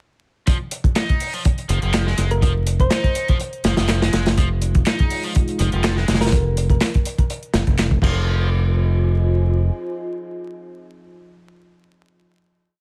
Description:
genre	breakbeat, breaks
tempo	123 BPM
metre	4/4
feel	swing 54% on 16ths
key	F minor pentatonic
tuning	A4 = 444 Hz
part	distorted electric guitar	riff	0.5-8.5 s	F3 to Eb4	-31 LUFS	equal	overdrive, tube saturation, delay
part	crunchy breakbeat drum kit	drums	0.5-8.1 s	crash cymbal, hi-hat, kick drum, snare drum	-21 LUFS	equal	none
part	punchy analog drum machine	drums	0.5-7.9 s	handclaps, hi-hat	-32 LUFS	equal	none
part	modern bright fingered electric bass	bass	1.7-9.7 s	F1	-21 LUFS	equal	none
part	thumb-piano-like synth pluck	melody	2.3-6.3 s	Bb4 to C5	-30 LUFS	equal	chorus, AM radio sound, delay
part	dark analog pad	sustained chords	4.6-12.2 s	Ab3 to Ab5	-32 LUFS	equal	chorus, sidechain pumping
room	little or no reverb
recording	vinyl crackle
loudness	-19 LUFS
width	mono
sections	0.5-8.3 drop; 8.3-12.2 final hit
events	drop 0.5-8.3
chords	0.5 Fm7

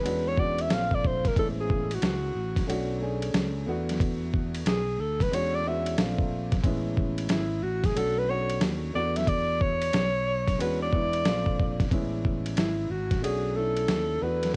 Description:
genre	hip hop, jazz-hop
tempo	91 BPM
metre	4/4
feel	swing 64% on 16ths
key	unclear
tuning	A4 = 440 Hz
part	mellow alto saxophone	melody	0.0-14.5 s	E4 to E#5	-31 LUFS	equal	cassette tape, analog delay
part	warm upright piano	accompaniment	0.0-14.6 s	G#3 to G#4	-36 LUFS	equal	cassette tape
part	fretless electric bass	bass	0.0-14.6 s	G#1 to E2	-34 LUFS	equal	none
part	dusty soul sampler-style drum kit	drums	0.1-14.5 s	hi-hat, kick drum, ride cymbal, snare drum	-31 LUFS	equal	overdrive, cassette tape
room	light reverb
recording	home recording on cassette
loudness	-27 LUFS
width	mono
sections	0.0-11.9 A section; 11.9-14.6 B section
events	alto saxophone solo 0.0-11.9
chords	0.0 E13; 0.7 A#maj7; 1.4 Amaj7; 2.7 Bm9; 3.7 E9sus4; 5.3 E13; 6.0 A#maj7; 6.6 Amaj7; 8.0 Bm9; 8.9 E9sus4; 10.6 E13; 11.3 A#maj7; 11.9 Amaj7; 13.2 Bm9

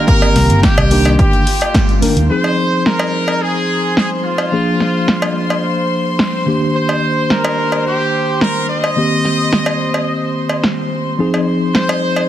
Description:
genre	nu-disco, nu disco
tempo	108 BPM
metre	4/4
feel	straight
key	F dorian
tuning	A4 = 439 Hz
part	brilliant trumpet section	melody	0.0-12.3 s	F4 to Eb5	-19 LUFS	equal	tape echo
part	mellow tine electric piano	accompaniment	0.0-12.3 s	Eb3 to Bb4	-18 LUFS	equal	medium stereo tremolo, sidechain pumping, low-pass filter
part	rich chamber string section	sustained chords	0.0-12.3 s	F4 to C6	-23 LUFS	equal	sidechain pumping
part	electronic kick drum	drums	0.1-1.9 s	none	-14 LUFS	equal	none
part	house drum kit	drums	0.1-11.9 s	hi-hat, snare drum	-19 LUFS	equal	low-pass filter on hats, low-pass filter on snare
part	cowbell	percussion	0.2-12.3 s	none	-21 LUFS	equal	none
part	fingered electric bass	bass	0.4-2.3 s	G1 to Eb2	-13 LUFS	equal	none
room	moderate plate reverb, RT60 2.0 s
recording	heavily compressed radio sound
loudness	-12 LUFS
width	side -11 dB against mid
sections	0.0-2.3 A section; 2.3-12.3 B section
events	band accent 1.7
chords	0.1 Cm7; 1.2 Ebmaj7; 2.3 Fm7; 4.5 Bb7; 6.5 Ebmaj7; 9.0 Cm7; 11.2 Fm7

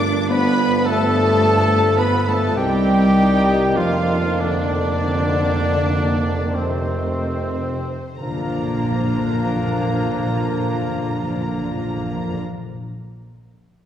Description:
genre	classical, slow romantic movement for symphony orchestra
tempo	34-55 BPM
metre	3/4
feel	rubato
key	Bb major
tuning	A4 = 439 Hz
part	dark symphonic violin section	melody	0.0-12.4 s	C5 to D6	-31 LUFS	left 3 dB	none
part	clear clarinet	second line	0.0-12.4 s	A3 to D4	-31 LUFS	left 4 dB	none
part	mellow cor anglais	second line	0.0-12.4 s	C4 to B4	-31 LUFS	right 1 dB	none
part	silver concert flute	second line	0.0-12.4 s	C5 to B5	-31 LUFS	left 1 dB	none
part	warm symphonic violin section	second line	0.0-12.4 s	C5 to D6	-33 LUFS	left 2 dB	none
part	mellow bassoon	accompaniment	0.0-12.4 s	Eb3 to Bb3	-29 LUFS	equal	none
part	rich symphonic viola section	accompaniment	0.0-12.4 s	A3 to F4	-29 LUFS	right 1 dB	none
part	mellow French horn section	sustained chords	0.0-12.4 s	C3 to D4	-25 LUFS	left 2 dB	none
part	bright trumpet	stabs	0.0-12.4 s	Bb3 to B4	-25 LUFS	left 1 dB	none
part	clear tuba	bass	0.0-12.4 s	F1 to C2	-27 LUFS	right 2 dB	none
part	rich symphonic cello section	bass	0.0-12.4 s	C3 to D4	-26 LUFS	right 2 dB	none
part	rich symphonic double bass section	bass	0.0-12.4 s	Bb1 to G2	-26 LUFS	right 1 dB	none
part	timpani	percussion	8.2-12.4 s	Bb2	-27 LUFS	right 1 dB	none
room	wet scoring stage reverb, RT60 2.0 s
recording	heard from further back in the room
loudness	-17 LUFS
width	side -10 dB against mid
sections	0.0-8.2 A section; 8.2-13.2 B section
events	slowing down 0.0-8.2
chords	0.3 G7; 2.6 Cm; 3.8 F7sus4; 6.5 F7; 8.2 Bb

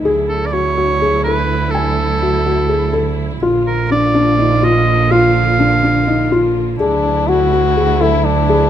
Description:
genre	contemporary instrumental, contemporary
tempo	248 BPM (eighths)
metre	7/8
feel	straight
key	unclear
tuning	A4 = 440 Hz
part	clear symphonic string section	sustained chords	0.0-8.7 s	D3 to E#4	-23 LUFS	left 1 dB	none
part	warm double bass	bass	0.0-8.7 s	A#1 to D2	-18 LUFS	right 5 dB	none
part	felt-muted upright piano	arpeggios	0.1-8.7 s	D4 to G#5	-16 LUFS	left 3 dB	none
part	clear oboe	melody	0.3-6.6 s	A4 to E#5	-17 LUFS	right 2 dB	none
part	French horn with straight mute	second line	6.8-8.7 s	D4 to F#4	-16 LUFS	left 7 dB	none
room	moderate recital hall reverb, RT60 1.5 s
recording	close, detailed microphones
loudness	-12 LUFS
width	side -10 dB against mid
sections	0.1-8.7 A section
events	none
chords	0.1 Dadd9; 3.4 A#; 6.8 Dadd9

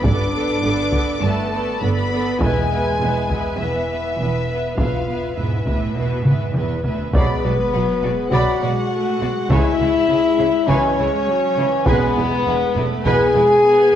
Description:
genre	cinematic, epic orchestral film score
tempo	102 BPM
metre	4/4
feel	straight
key	B dorian from 7.1 s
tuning	A4 = 438 Hz
part	rich symphonic violin section	melody	0.0-14.0 s	B4 to D6	-28 LUFS	left 2 dB	none
part	rich symphonic violin section	second line	0.0-13.4 s	E4 to B5	-29 LUFS	left 2 dB	none
part	rich symphonic viola section	accompaniment	0.0-14.0 s	E3 to B4	-26 LUFS	right 2 dB	none
part	warm French horn section	sustained chords	0.0-14.0 s	E3 to G#4	-19 LUFS	left 2 dB	none
part	clear symphonic double bass section	bass	0.0-13.4 s	E1 to C#2	-26 LUFS	right 3 dB	none
part	rich symphonic cello section	bass	0.0-13.4 s	D2 to C#3	-26 LUFS	right 2 dB	none
part	taiko ensemble	drums	0.0-13.6 s	none	-22 LUFS	equal	none
part	timpani	percussion	2.4-3.3 s	E2	-30 LUFS	equal	none
part	warm trombone section	sustained chords	7.1-13.3 s	B2 to G#3	-29 LUFS	right 3 dB	none
part	mellow trumpet	stabs	7.1-13.3 s	B4 to D5	-28 LUFS	equal	none
part	sub drop	sound effects	7.3-9.5 s	none	-32 LUFS	equal	none
room	wet scoring stage reverb, RT60 1.6 s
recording	worn, warbling old tape, cassette tape, warbly pitch drift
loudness	-16 LUFS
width	side -10 dB against mid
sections	0.0-7.1 A section; 7.1-14.0 B section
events	drum fill 6.3-7.1; impact 7.1-9.5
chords	0.0 Gadd9; 2.4 E; 7.1 Bm; 9.5 C#m7; 11.9 E

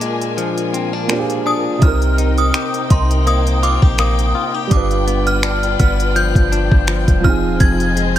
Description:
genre	contemporary R&B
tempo	83 BPM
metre	4/4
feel	swing 54% on 16ths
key	C minor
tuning	A4 = 440 Hz
part	synth chime	melody	0.0-8.2 s	C6 to Ab6	-21 LUFS	equal	ensemble chorus, tremolo, ping-pong delay
part	warm grand piano	accompaniment	0.0-8.2 s	Bb2 to B4	-23 LUFS	right 6 dB	none
part	warm studio string section	sustained chords	0.0-8.2 s	D4 to Ab5	-25 LUFS	left 1 dB	none
part	direct-recorded clean electric guitar	arpeggios	0.0-8.2 s	F2 to G4	-22 LUFS	left 7 dB	ping-pong delay
part	smooth R&B drum kit	drums	0.0-8.2 s	finger snaps, hi-hat, kick drum	-16 LUFS	equal	none
part	clean 808-style bass	bass	1.8-8.2 s	Eb1 to C2	-17 LUFS	equal	none
room	digital ambience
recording	none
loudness	-13 LUFS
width	side -12 dB against mid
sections	0.0-8.2 A section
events	break 0.0-1.8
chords	0.0 Bb7; 1.8 Cm7; 4.7 G7; 7.2 Fm7

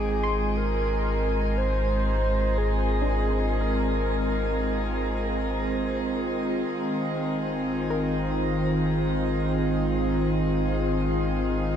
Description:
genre	ambient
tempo	free time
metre	none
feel	none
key	unclear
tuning	A4 = 440 Hz
part	warm velvety synth lead	melody	0.0-5.7 s	Ab4 to C5	-31 LUFS	right 1 dB	chorus, cassette tape, diffuse ambient delay
part	warm analog pad	sustained chords	0.0-11.8 s	Eb3 to C5	-27 LUFS	right 1 dB	lush chorus
part	soft round pluck	arpeggios	0.0-11.8 s	D4 to D6	-38 LUFS	left 2 dB	none
part	round analog bass	bass	0.0-11.8 s	Ab1	-29 LUFS	equal	none
part	pedal harmonium	drone	0.0-11.8 s	Eb3 to Ab3	-33 LUFS	left 1 dB	stereo widening
room	moderate shimmer reverb, RT60 7.9 s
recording	none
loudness	-23 LUFS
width	side -8 dB against mid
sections	0.0-11.8 A section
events	filter sweep on analog synth pad 0.0-11.8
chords	0.0 Bb9/Ab

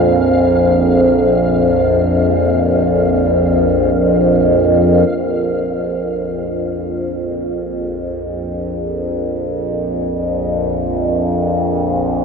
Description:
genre	dark ambient drone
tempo	free time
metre	none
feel	none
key	unclear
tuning	A4 = 440 Hz
part	overtone-sweeping drone	drone	0.0-12.2 s	Bb1 to F2	-13 LUFS	equal	chorus, built-in reverb
part	flickering grainy texture	texture	0.0-5.1 s	F5	-31 LUFS	equal	built-in reverb, shimmer reverb
room	wet huge ambient reverb, RT60 8.7 s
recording	worn, warbling old tape, cassette tape, warbly pitch drift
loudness	-13 LUFS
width	side -5 dB against mid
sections	0.0-5.1 A section; 5.1-12.2 B section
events	fade-in on synth drone 5.1-12.2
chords	0.0 Bb5

